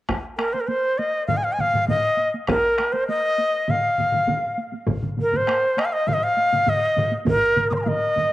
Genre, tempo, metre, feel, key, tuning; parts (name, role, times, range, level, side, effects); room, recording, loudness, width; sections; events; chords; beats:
japanese traditional, taiko drum ensemble; 100 BPM; 4/4; straight; A4 = 440 Hz
solo taiko drums; percussion; 0.1-8.3 s; -31 LUFS; right 4 dB
taiko ensemble; percussion; 0.1-8.3 s; -31 LUFS; right 3 dB
taiko ensemble; percussion; 0.1-8.3 s; -28 LUFS; left 2 dB
taiko ensemble; percussion; 0.1-7.4 s; -27 LUFS; equal
breathy bright shakuhachi; melody; 0.4-8.3 s; Bb4 to Eb6; -20 LUFS; equal; cassette tape
wet spring reverb, RT60 2.2 s; home recording on cassette; -19 LUFS; side -15 dB against mid
0.1-8.3 A section
| 0.09 0.69 1.29 1.89 | 2.49 3.09 3.69 4.28 | 4.88 5.48 6.08 6.68 | 7.27 7.87